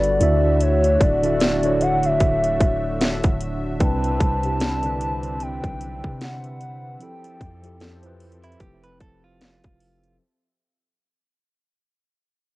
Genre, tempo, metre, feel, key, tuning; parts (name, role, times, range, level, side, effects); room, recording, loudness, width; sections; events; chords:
contemporary R&B; 75 BPM; 4/4; swing 58% on 16ths; A4 = 440 Hz
hollow clarinet-like synth lead; melody; 0.0-7.8 s; C#5 to A5; -24 LUFS; equal; chorus, cassette tape
mellow tine electric piano; accompaniment; 0.0-10.2 s; C3 to E5; -26 LUFS; equal; medium stereo tremolo, cassette tape
warm analog pad; sustained chords; 0.0-10.2 s; D3 to E5; -31 LUFS; equal; lush chorus, cassette tape
long sustained 808-style bass; bass; 0.0-10.2 s; D1 to C3; -26 LUFS; equal
trap drum kit; drums; 0.0-10.2 s; hi-hat, kick drum, snare drum; -22 LUFS; equal; overdrive, cassette tape
celesta; texture; 3.8-9.3 s; A4 to G5; -40 LUFS; right 2 dB
direct-recorded clean electric guitar; arpeggios; 8.4-10.2 s; E4 to B4; -59 LUFS; right 3 dB; warbly pitch drift, cassette tape, analog delay
light reverb; home recording on cassette; -18 LUFS; side -19 dB against mid
0.0-10.2 A section
fade-out 0.0-10.2
0.2 Dmaj9; 3.8 Cmaj9; 7.0 Fmaj9